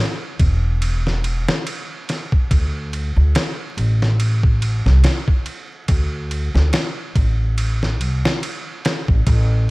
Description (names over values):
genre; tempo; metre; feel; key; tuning
trip hop; 71 BPM; 4/4; swing 56% on 16ths; unclear; A4 = 440 Hz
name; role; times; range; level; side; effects
upright bass; bass; 0.4-9.7 s; E1 to D2; -17 LUFS; equal; none
trip hop sampler-style drum kit; drums; 0.4-9.5 s; kick drum, ride cymbal, snare drum; -20 LUFS; equal; small room ambience
room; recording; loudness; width
digital ambience; vinyl crackle; -16 LUFS; side -23 dB against mid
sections
0.0-9.7 A section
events
none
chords
none